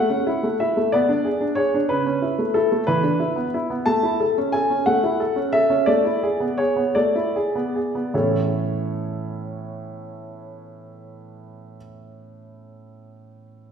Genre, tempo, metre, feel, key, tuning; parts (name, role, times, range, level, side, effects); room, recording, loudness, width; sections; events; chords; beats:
classical-period piano sonatina; 50-63 BPM (dotted quarters); 6/8; rubato; A major; A4 = 440 Hz
clear baby grand piano; solo; 0.0-13.7 s; A2 to A5; -20 LUFS; equal
wet recital hall reverb, RT60 1.7 s; heard from further back in the room; -19 LUFS; side -7 dB against mid
0.0-8.1 A section; 8.1-12.8 B section
slowing down 2.9-8.1
0.0 A; 0.9 G#dim/B; 1.9 A/C#; 2.9 E5; 3.9 A; 5.9 E7/A; 8.1 A
0.93 | 1.91 2.87 | 3.87 4.86 | 5.88 6.97 | 8.14 9.31 | 10.47 11.63